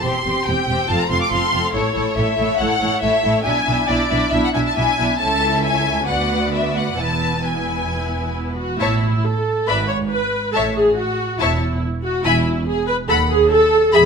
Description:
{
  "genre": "quick classical-period movement for string orchestra",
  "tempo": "139 BPM",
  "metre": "4/4",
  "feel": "rubato",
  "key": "A major",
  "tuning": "A4 = 440 Hz",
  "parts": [
    { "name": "warm symphonic violin section", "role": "melody", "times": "0.0-14.1 s", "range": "C#5 to D6", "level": "-20 LUFS", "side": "left 2 dB", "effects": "none" },
    { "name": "warm symphonic violin section", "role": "second line", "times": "0.0-14.1 s", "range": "E4 to B5", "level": "-24 LUFS", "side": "left 4 dB", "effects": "none" },
    { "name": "rich symphonic viola section", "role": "accompaniment", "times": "0.0-14.0 s", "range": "A3 to C#5", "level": "-20 LUFS", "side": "right 1 dB", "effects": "none" },
    { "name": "dark studio double bass section", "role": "bass", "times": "0.0-14.1 s", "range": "E1 to D#2", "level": "-25 LUFS", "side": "right 2 dB", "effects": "none" },
    { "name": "warm studio cello section", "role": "bass", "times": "0.0-14.1 s", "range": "C#2 to B2", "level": "-25 LUFS", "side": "right 3 dB", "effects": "none" }
  ],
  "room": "light reverb",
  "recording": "close, detailed microphones",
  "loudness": "-16 LUFS",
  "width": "side -6 dB against mid",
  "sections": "0.0-8.8 A section; 8.8-14.1 B section",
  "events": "none",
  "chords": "0.0 C/E; 0.9 F; 1.7 A; 3.5 E7/B; 5.2 A/C#; 6.1 Bm/D; 7.0 E; 8.8 A; 9.7 E7/G#; 10.5 A; 12.2 E; 13.1 B7/D#"
}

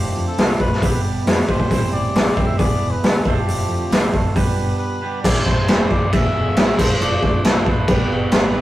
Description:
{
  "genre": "indie rock",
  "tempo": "136 BPM",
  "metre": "4/4",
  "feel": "straight",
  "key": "A minor",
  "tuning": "A4 = 441 Hz",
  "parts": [
    { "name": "mellow trumpet", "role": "melody", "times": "0.0-8.6 s", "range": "G4 to E5", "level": "-26 LUFS", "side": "left 1 dB", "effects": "none" },
    { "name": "dark analog pad", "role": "sustained chords", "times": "0.0-8.6 s", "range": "C3 to G4", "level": "-31 LUFS", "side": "equal", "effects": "none" },
    { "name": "twangy electric guitar", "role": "riff", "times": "0.0-8.6 s", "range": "A2 to C5", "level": "-26 LUFS", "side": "right 5 dB", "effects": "none" },
    { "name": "growling fingered electric bass", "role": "bass", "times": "0.0-8.6 s", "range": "E1 to F2", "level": "-28 LUFS", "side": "equal", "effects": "none" },
    { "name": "raw garage drum kit", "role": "drums", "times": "0.4-8.4 s", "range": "crash cymbal, hi-hat, kick drum, snare drum", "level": "-17 LUFS", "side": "equal", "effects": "none" }
  ],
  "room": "light reverb",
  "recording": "rough rehearsal-room recording, warm saturation",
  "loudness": "-15 LUFS",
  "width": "side -15 dB against mid",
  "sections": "0.0-5.2 A section; 5.2-8.6 B section",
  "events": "break 4.8-5.2",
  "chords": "0.0 Dm7/F; 0.8 G; 1.7 Am7; 2.6 E7; 3.3 Dm7/F; 4.4 G; 5.2 Am7; 6.1 E7; 6.8 Dm7/F; 7.9 G"
}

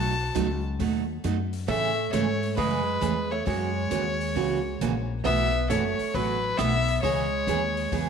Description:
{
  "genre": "country, western swing",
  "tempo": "135 BPM",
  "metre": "4/4",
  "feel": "swing 66% on 8ths",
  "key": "unclear",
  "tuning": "A4 = 440 Hz",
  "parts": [
    { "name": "clear fiddle", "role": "melody", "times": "0.0-8.1 s", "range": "B4 to A5", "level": "-28 LUFS", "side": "left 4 dB", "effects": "slapback echo" },
    { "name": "archtop guitar, miked and amplified", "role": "second line", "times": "0.0-8.1 s", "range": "F#3 to F#4", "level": "-31 LUFS", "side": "right 8 dB", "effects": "none" },
    { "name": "picked steel-string acoustic guitar", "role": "accompaniment", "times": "0.0-8.1 s", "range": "B2 to G#4", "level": "-29 LUFS", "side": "right 8 dB", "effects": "none" },
    { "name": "upright bass", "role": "bass", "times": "0.0-8.1 s", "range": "F#1 to A2", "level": "-30 LUFS", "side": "left 2 dB", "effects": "none" },
    { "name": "swinging big-band drum kit", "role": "drums", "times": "0.4-8.1 s", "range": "hi-hat, kick drum", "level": "-41 LUFS", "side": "left 10 dB", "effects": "none" }
  ],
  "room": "moderate echo chamber reverb, RT60 1.4 s, small room ambience",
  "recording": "1960s-style stereo with parts hard left and right",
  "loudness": "-24 LUFS",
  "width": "side -6 dB against mid",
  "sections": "0.0-8.1 A section",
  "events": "none",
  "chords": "0.0 B7; 1.7 Amaj7; 3.5 F#9; 5.2 B7sus4; 7.0 C#m7"
}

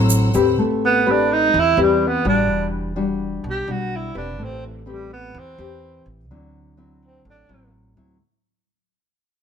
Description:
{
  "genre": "bossa nova",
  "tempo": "126 BPM",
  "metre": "4/4",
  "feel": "straight",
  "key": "unclear",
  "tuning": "A4 = 440 Hz",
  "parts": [
    { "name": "nylon-string guitar", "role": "accompaniment", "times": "0.0-8.2 s", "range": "A2 to B4", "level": "-20 LUFS", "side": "left 4 dB", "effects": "none" },
    { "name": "clear studio string section", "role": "sustained chords", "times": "0.0-0.6 s", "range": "C5 to E6", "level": "-31 LUFS", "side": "left 3 dB", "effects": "none" },
    { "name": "upright bass", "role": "bass", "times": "0.0-8.2 s", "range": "E1 to E2", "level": "-27 LUFS", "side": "right 1 dB", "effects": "none" },
    { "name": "tube shaker", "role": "percussion", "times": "0.1-0.6 s", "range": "none", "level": "-24 LUFS", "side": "right 7 dB", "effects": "none" },
    { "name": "breathy tenor saxophone", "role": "melody", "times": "0.9-7.7 s", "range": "E3 to G4", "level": "-19 LUFS", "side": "right 4 dB", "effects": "none" }
  ],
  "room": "light reverb",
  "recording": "close, detailed microphones",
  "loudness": "-16 LUFS",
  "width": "side -7 dB against mid",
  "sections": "0.0-8.2 A section",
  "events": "fade-out 0.0-8.2; tenor saxophone solo 0.0-8.2",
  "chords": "0.0 Am9; 2.5 Em9; 4.4 Am9; 6.3 D9"
}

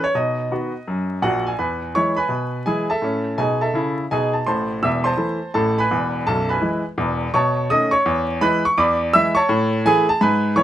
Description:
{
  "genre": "jazz, stride piano",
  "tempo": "167 BPM",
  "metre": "4/4",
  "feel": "swing 63% on 8ths",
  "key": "E major",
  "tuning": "A4 = 441 Hz",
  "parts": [
    { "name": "bright baby grand piano", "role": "solo", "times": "0.0-10.6 s", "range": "B0 to E6", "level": "-17 LUFS", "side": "equal", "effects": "none" }
  ],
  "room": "light reverb",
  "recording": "dark, warm production, vinyl crackle",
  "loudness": "-17 LUFS",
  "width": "side -12 dB against mid",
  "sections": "0.0-1.6 A section; 1.6-10.6 B section",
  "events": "none",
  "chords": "0.1 B; 1.6 E; 3.0 A; 4.5 Am; 5.9 E; 7.3 B9; 8.0 E; 8.8 E7; 9.5 A"
}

